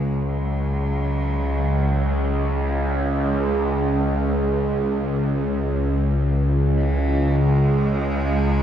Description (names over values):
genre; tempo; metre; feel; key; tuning
dark ambient drone; free time; none; none; C# minor; A4 = 440 Hz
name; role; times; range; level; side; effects
clear cello; melody; 0.0-8.6 s; E3 to G#3; -35 LUFS; equal; tape echo
dark detuned synth bell; arpeggios; 0.0-8.6 s; none; barely audible; none; none
bowed-like drone; drone; 0.0-8.6 s; C#2; -19 LUFS; equal; built-in reverb, phaser
room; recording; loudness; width
wet cathedral reverb, RT60 6.0 s; in a vast, echoing space, cassette tape; -19 LUFS; side -9 dB against mid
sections
0.0-8.6 A section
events
fade-in on cello 0.0-8.6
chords
0.0 C#m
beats
free time